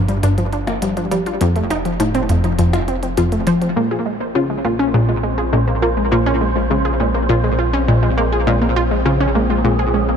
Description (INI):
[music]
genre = ambient, sequencer-driven space music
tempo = 102 BPM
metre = 4/4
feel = straight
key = Bb minor from 3.8 s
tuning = A4 = 440 Hz
[part]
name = wide unison pluck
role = arpeggios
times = 0.0-10.2 s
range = F3 to C5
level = -20 LUFS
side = left 1 dB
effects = auto-pan, tape echo
[part]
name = plucky analog bass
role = riff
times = 0.0-9.9 s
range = F2 to Bb3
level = -18 LUFS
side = equal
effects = analog chorus, tape echo
[part]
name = warm sub bass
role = bass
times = 0.0-10.2 s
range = F1 to Bb1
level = -23 LUFS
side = equal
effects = none
[part]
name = electronic hi-hat and percussion blips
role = percussion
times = 0.1-3.7 s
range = none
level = -30 LUFS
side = equal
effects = tape echo
[part]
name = wind-like tuned noise texture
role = texture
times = 4.5-10.2 s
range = C4 to C5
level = -23 LUFS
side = equal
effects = built-in reverb
[sound]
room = light reverb, digital ambience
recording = none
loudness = -15 LUFS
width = side -7 dB against mid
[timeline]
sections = 0.0-3.8 A section; 3.8-10.2 B section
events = filter sweep on analog synth bass 0.0-3.8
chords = 0.0 G7(no3); 1.4 F; 3.8 Bbm7